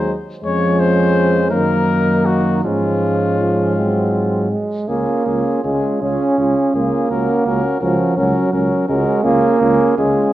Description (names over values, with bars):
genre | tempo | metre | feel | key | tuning
classical, brass quintet | 54 BPM (dotted quarters) | 6/8 | uneven beats, rubato | Db major | A4 = 439 Hz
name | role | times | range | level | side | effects
clear trumpet | melody | 0.0-10.3 s | F4 to Db5 | -22 LUFS | left 5 dB | none
mellow flugelhorn | second line | 0.0-10.3 s | C4 to Gb4 | -24 LUFS | right 4 dB | none
clear French horn | accompaniment | 0.0-10.3 s | Ab3 to Db4 | -20 LUFS | left 2 dB | none
clear trombone | accompaniment | 0.0-10.3 s | Eb3 to Db4 | -18 LUFS | right 3 dB | none
mellow tuba | bass | 0.0-10.1 s | Db2 to Ab2 | -21 LUFS | right 2 dB | none
room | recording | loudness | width
moderate recital hall reverb, RT60 1.4 s | worn, warbling old tape, cassette tape, warbly pitch drift | -14 LUFS | side -14 dB against mid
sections
0.0-4.9 A section; 4.9-10.3 B section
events
none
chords
0.4 Db/F; 1.5 Ebm/Gb; 2.6 Db/Ab; 3.8 Ab; 4.9 Db; 7.1 Gb/Db; 9.3 Db